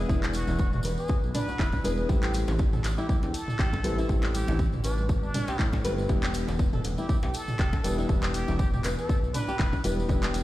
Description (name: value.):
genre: afro house.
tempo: 120 BPM.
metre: 4/4.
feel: swing 55% on 16ths.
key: E minor.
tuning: A4 = 435 Hz.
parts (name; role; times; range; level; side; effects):
trumpet with plunger mute; melody; 0.0-9.8 s; D4 to B4; -38 LUFS; equal; dub echo.
flamenco guitar; arpeggios; 0.0-10.3 s; D4 to B4; -34 LUFS; equal; sidechain pumping, dub echo.
felt-muted upright piano; stabs; 0.0-10.4 s; A3 to G#4; -36 LUFS; left 3 dB; sidechain pumping, dub echo.
smooth synth bass; bass; 0.0-10.4 s; E1 to A2; -31 LUFS; equal; tube saturation, sidechain pumping.
electronic kick drum; drums; 0.1-10.2 s; none; -26 LUFS; equal; none.
congas; percussion; 0.1-10.4 s; none; -37 LUFS; right 2 dB; none.
djembe; percussion; 0.1-10.3 s; none; -38 LUFS; left 1 dB; none.
tambourine; percussion; 0.1-10.4 s; none; -45 LUFS; left 1 dB; none.
house drum kit; drums; 0.2-10.4 s; handclaps, hi-hat, toms; -34 LUFS; equal; none.
room: studio ambience.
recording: played on a big sound system in a bare room, stone room reverb.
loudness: -24 LUFS.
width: side -16 dB against mid.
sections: 0.0-10.4 A section.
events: none.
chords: 0.0 E7; 2.1 Am7; 6.1 Em7.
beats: | 0.09 0.59 1.09 1.59 | 2.09 2.59 3.09 3.59 | 4.09 4.59 5.09 5.59 | 6.09 6.59 7.09 7.59 | 8.09 8.59 9.09 9.59 | 10.09.